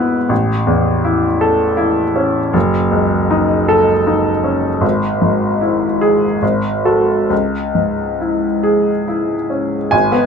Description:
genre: classical, romantic character piece for solo piano.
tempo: 66-83 BPM.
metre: 3/4.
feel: rubato.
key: C# minor.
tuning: A4 = 440 Hz.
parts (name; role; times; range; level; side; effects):
clear baby grand piano; solo; 0.0-10.3 s; F#1 to G#5; -13 LUFS; equal; none.
room: moderate studio reverb, RT60 0.5 s.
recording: minimal, uncompressed stereo recording.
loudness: -13 LUFS.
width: side -6 dB against mid.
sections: 0.0-9.9 A section.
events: none.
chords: 0.3 A; 2.5 D#m7b5/F#; 4.8 E/G#; 6.4 F#madd9/G#; 7.3 C#m.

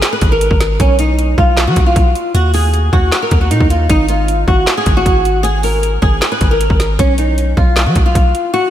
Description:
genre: hip hop, trap.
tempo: 155 BPM.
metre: 4/4.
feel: half-time.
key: unclear.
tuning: A4 = 439 Hz.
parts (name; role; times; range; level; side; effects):
flamenco guitar; melody; 0.0-8.7 s; Db4 to Cb5; -15 LUFS; equal; analog chorus, diffuse ambient delay.
trap drum kit; drums; 0.0-8.4 s; handclaps, hi-hat, kick drum, snare drum; -14 LUFS; equal; none.
long sustained 808-style bass; bass; 0.2-8.3 s; Ab1 to F#3; -14 LUFS; equal; none.
room: moderate lush hall reverb, RT60 2.2 s.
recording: dreamy mix soaked in reverb.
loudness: -10 LUFS.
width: side -11 dB against mid.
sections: 0.0-8.7 A section.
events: drums muted 8.5.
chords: 0.0 Absus2; 0.8 B5; 2.3 Eb5; 3.9 Ab7sus2; 7.0 B5.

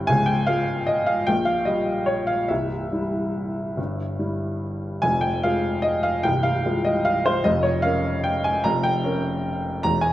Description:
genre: classical, piano waltz.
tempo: 136-158 BPM.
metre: 3/4.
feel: rubato.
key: F minor.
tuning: A4 = 441 Hz.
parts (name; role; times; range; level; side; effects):
warm upright piano; solo; 0.0-10.1 s; C1 to Bb5; -20 LUFS; equal; none.
room: moderate recital hall reverb, RT60 1.5 s.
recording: none.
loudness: -20 LUFS.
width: side -14 dB against mid.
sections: 0.0-5.0 A section; 5.0-10.1 A section.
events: none.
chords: 0.1 Db; 1.3 Bbm6; 2.5 C; 5.0 Fm; 7.5 Gm7b5/F.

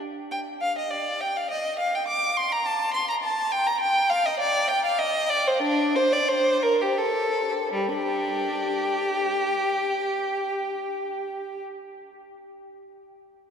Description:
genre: classical, baroque-style suite movement for unaccompanied violin.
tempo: 78-104 BPM.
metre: 3/4.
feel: rubato.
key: G minor.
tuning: A4 = 442 Hz.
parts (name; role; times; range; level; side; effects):
rich violin; solo; 0.3-11.6 s; G3 to D6; -23 LUFS; equal; none.
room: wet cathedral reverb, RT60 5.5 s.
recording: none.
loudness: -22 LUFS.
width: side -7 dB against mid.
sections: 0.0-7.7 A section; 7.7-12.2 B section.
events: slowing down 2.9-7.7.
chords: none.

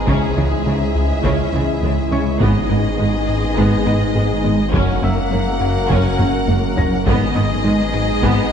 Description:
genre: cinematic, hybrid orchestral and electronic film score.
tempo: 103 BPM.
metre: 4/4.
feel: straight.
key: G# minor.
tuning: A4 = 439 Hz.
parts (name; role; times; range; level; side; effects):
warm symphonic violin section; melody; 0.0-8.5 s; D#5 to F#5; -26 LUFS; left 4 dB; none.
warm symphonic violin section; second line; 0.0-8.5 s; G#4 to A#4; -28 LUFS; left 4 dB; none.
clear trombone section; sustained chords; 0.0-8.5 s; F#2 to A#3; -27 LUFS; right 5 dB; none.
granular cloud pad; sustained chords; 0.0-8.5 s; F#3 to A#4; -26 LUFS; equal; built-in reverb.
mellow French horn section; sustained chords; 0.0-8.5 s; B3 to F#4; -26 LUFS; left 4 dB; none.
wide detuned saw bass; bass; 0.0-8.5 s; F#1 to C#2; -24 LUFS; equal; chorus.
bright grand piano; texture; 0.0-8.5 s; A#4 to A#6; -34 LUFS; left 2 dB; digital delay.
warm symphonic viola section; accompaniment; 0.1-8.5 s; G#3 to C#4; -26 LUFS; right 1 dB; none.
soft round pluck; arpeggios; 0.1-8.4 s; C#3 to D#4; -27 LUFS; left 4 dB; none.
rubbery square bass; riff; 0.1-8.4 s; C#2 to G#3; -22 LUFS; left 2 dB; none.
dark symphonic double bass section; bass; 0.1-8.3 s; F#1 to C#2; -24 LUFS; right 3 dB; none.
rich symphonic cello section; bass; 0.1-8.3 s; F#2 to C#3; -24 LUFS; right 4 dB; none.
solo taiko drums; drums; 0.1-8.5 s; none; -24 LUFS; equal; none.
room: moderate scoring stage reverb, RT60 1.6 s.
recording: dark, warm production, nothing above 10.9 kHz.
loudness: -15 LUFS.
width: side -8 dB against mid.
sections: 0.0-8.5 A section.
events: drum fill 6.2-7.1.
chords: 0.1 C#m; 2.4 G#m; 4.7 F#; 7.1 G#m.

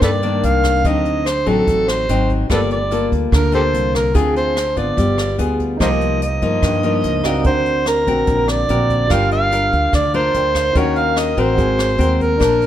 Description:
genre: bossa nova.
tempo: 145 BPM.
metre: 4/4.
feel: straight.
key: G minor.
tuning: A4 = 440 Hz.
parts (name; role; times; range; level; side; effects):
overdriven harmonica; melody; 0.0-12.7 s; G4 to F5; -18 LUFS; right 2 dB; none.
nylon-string guitar; accompaniment; 0.0-12.7 s; G2 to C5; -19 LUFS; left 4 dB; none.
upright bass; bass; 0.0-12.7 s; G1 to G2; -20 LUFS; right 1 dB; none.
jazz brush drum kit; drums; 0.0-12.7 s; hi-hat, kick drum, rim click; -24 LUFS; equal; none.
warm concert grand piano; accompaniment; 5.8-12.7 s; D4 to D6; -27 LUFS; right 6 dB; none.
room: moderate large studio reverb, RT60 1.1 s.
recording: none.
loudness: -14 LUFS.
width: side -11 dB against mid.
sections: 0.0-12.7 A section.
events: none.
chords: 0.0 Cm9; 0.9 D7b9; 2.5 Gm9; 4.2 Dm7b5; 5.0 G7b9; 5.8 Cm11; 7.5 Daug7; 9.1 Gm7; 10.8 Ebm7; 11.6 Ab9.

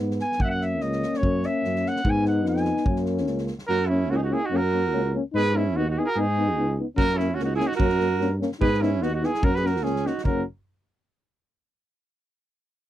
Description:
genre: balkan folk, Balkan brass band.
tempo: 146 BPM.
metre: 2/4.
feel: straight.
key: F# mixolydian.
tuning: A4 = 438 Hz.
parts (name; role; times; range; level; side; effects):
dark trombone; accompaniment; 0.0-10.4 s; A#3 to B3; -32 LUFS; right 4 dB; none.
mellow euphonium; accompaniment; 0.0-10.4 s; C#4 to D#4; -28 LUFS; left 6 dB; none.
mellow tuba; bass; 0.0-10.4 s; F#1 to G#2; -26 LUFS; equal; none.
natural country drum kit; percussion; 0.1-3.6, 7.0-10.4 s; kick drum, snare drum; -28 LUFS; equal; none.
warm trumpet; melody; 0.2-10.4 s; E4 to G#5; -27 LUFS; equal; none.
breathy alto saxophone; second line; 3.7-10.4 s; C#4 to G#4; -29 LUFS; right 13 dB; none.
room: little or no reverb.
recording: dry, close 1970s-style studio recording.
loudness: -22 LUFS.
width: side -12 dB against mid.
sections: 0.0-3.7 A section; 3.7-10.2 B section.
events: trumpet solo 0.0-3.7.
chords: 0.4 F#; 2.0 G#m; 2.9 F#; 5.3 G#m; 7.0 F#; 8.6 G#m; 9.4 F#.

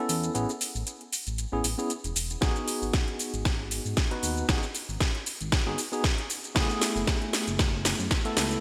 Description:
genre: deep house.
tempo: 116 BPM.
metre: 4/4.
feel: swing 55% on 16ths.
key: unclear.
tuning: A4 = 439 Hz.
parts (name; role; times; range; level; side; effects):
tine electric piano; stabs; 0.0-8.6 s; A3 to B4; -34 LUFS; equal; sidechain pumping, digital delay.
smooth synth bass; bass; 0.1-8.6 s; E1 to G#2; -36 LUFS; equal; sidechain pumping.
house drum kit; drums; 0.1-8.6 s; hi-hat, shaker, snare drum; -32 LUFS; equal; high-pass filter on hats, high-pass filter on perc, high-pass filter on snare, high-pass filter on room, gated reverb.
electronic kick drum; drums; 2.4-8.2 s; none; -29 LUFS; equal; none.
room: moderate lush hall reverb, RT60 1.7 s, digital ambience.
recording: bright 1980s-style digital production.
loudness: -28 LUFS.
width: mono.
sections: 0.0-8.6 A section.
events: build-up 0.0-8.6; drum fill 2.4-8.6.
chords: 0.0 Amaj9; 2.4 G#m7; 6.3 F#m11.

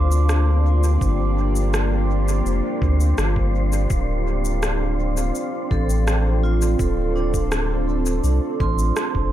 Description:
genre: ambient dub.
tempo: 83 BPM.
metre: 4/4.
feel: straight.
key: G minor.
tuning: A4 = 440 Hz.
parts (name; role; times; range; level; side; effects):
deep dark ambient pad; sustained chords; 0.0-9.3 s; Bb3 to D5; -26 LUFS; equal; chorus, built-in reverb.
vibraphone with medium hard mallets; arpeggios; 0.0-9.3 s; D4 to D6; -29 LUFS; right 4 dB; tape echo.
warm sub bass; bass; 0.0-9.3 s; D1 to D2; -20 LUFS; equal; none.
wind-like tuned noise texture; texture; 0.0-9.3 s; C4 to C5; -33 LUFS; equal; built-in reverb.
electronic shaker and rim click; drums; 0.1-9.1 s; none; -28 LUFS; left 1 dB; overdrive, dub echo.
electronic kick drum; drums; 1.0-9.3 s; none; -24 LUFS; equal; none.
room: little or no reverb.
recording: none.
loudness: -18 LUFS.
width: side -12 dB against mid.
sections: 0.0-9.3 A section.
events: none.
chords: 0.0 Gm7; 3.9 Dm7.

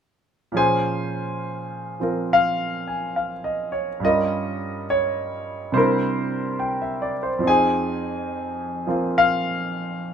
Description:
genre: jazz ballad.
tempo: 70 BPM.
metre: 4/4.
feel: swing 66% on 8ths.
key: Bb minor.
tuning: A4 = 439 Hz.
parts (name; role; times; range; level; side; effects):
warm concert grand piano; solo; 0.5-10.1 s; F2 to Ab5; -21 LUFS; equal; none.
room: light reverb.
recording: minimal, uncompressed stereo recording.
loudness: -21 LUFS.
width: side -8 dB against mid.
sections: 0.5-10.1 A section.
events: none.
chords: 0.5 Bbm9; 4.0 Gm7b5; 5.7 C7; 7.5 Fm7.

